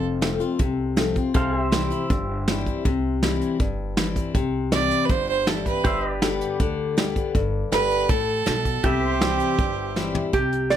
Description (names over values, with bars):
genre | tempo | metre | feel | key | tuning
honky-tonk and classic country | 160 BPM | 4/4 | straight | C major | A4 = 440 Hz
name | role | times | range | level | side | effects
clear fiddle | second line | 0.0, 4.7-10.2 s | G4 to D5 | -24 LUFS | right 7 dB | none
picked steel-string acoustic guitar | accompaniment | 0.0-10.8 s | F2 to G4 | -26 LUFS | left 6 dB | none
pedal steel guitar | sustained chords | 0.0-10.3 s | G4 to F5 | -30 LUFS | equal | none
upright bass | bass | 0.0-10.8 s | F1 to D2 | -29 LUFS | equal | none
soft brush drum kit | drums | 0.2-10.8 s | hi-hat, kick drum, rim click, snare drum, toms | -24 LUFS | right 1 dB | none
lap resonator guitar | melody | 10.3-10.8 s | G4 to D5 | -21 LUFS | right 5 dB | none
room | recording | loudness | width
light reverb | none | -20 LUFS | side -10 dB against mid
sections
0.0-10.3 A section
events
fiddle solo 0.0-10.3; drum fill 10.0-10.3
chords
0.0 F; 1.3 C; 5.8 G; 8.8 C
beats
0.22 0.60 0.97 | 1.35 1.72 2.10 2.47 | 2.85 3.22 3.60 3.97 | 4.35 4.72 5.10 5.47 | 5.85 6.22 6.59 6.97 | 7.34 7.72 8.09 8.47 | 8.84 9.21 9.59 9.96 | 10.34 10.71